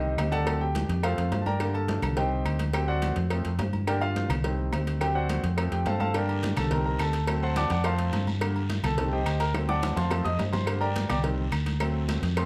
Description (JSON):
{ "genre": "latin, salsa", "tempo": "212 BPM", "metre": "4/4", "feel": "straight", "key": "G minor", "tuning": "A4 = 441 Hz", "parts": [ { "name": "clear concert grand piano", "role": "accompaniment", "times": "0.0-12.5 s", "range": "D3 to Eb6", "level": "-32 LUFS", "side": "equal", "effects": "none" }, { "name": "fingered electric bass", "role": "bass", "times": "0.0-12.5 s", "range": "C2 to G2", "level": "-30 LUFS", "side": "equal", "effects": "none" }, { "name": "congas", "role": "percussion", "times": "0.1-12.5 s", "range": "none", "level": "-38 LUFS", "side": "equal", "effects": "none" }, { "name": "claves", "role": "percussion", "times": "0.2-12.5 s", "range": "none", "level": "-44 LUFS", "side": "equal", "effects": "none" }, { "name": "cowbell and bongos", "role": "percussion", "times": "0.2-12.5 s", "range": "none", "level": "-39 LUFS", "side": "equal", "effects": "none" }, { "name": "timbales and agogo bells", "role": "percussion", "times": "0.2-12.5 s", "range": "none", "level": "-40 LUFS", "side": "equal", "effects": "none" }, { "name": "guiro", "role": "percussion", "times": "6.1-12.5 s", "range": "none", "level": "-46 LUFS", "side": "equal", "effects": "none" } ], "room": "moderate large studio reverb, RT60 1.0 s", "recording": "none", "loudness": "-27 LUFS", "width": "mono", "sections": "0.0-12.5 A section", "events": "grand piano solo 0.0-12.5; drum fill 9.5-10.7", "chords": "0.5 D7; 1.0 F; 1.6 Gm; 2.2 Cm; 2.7 D7; 3.3 F; 3.9 Gm; 4.4 Cm; 5.0 D7; 5.6 F; 6.1 Gm; 6.7 Cm; 7.3 D7; 7.8 F; 8.4 Gm; 9.0 Cm; 9.5 D7; 10.1 F; 10.7 Gm; 11.2 Cm; 11.8 D7" }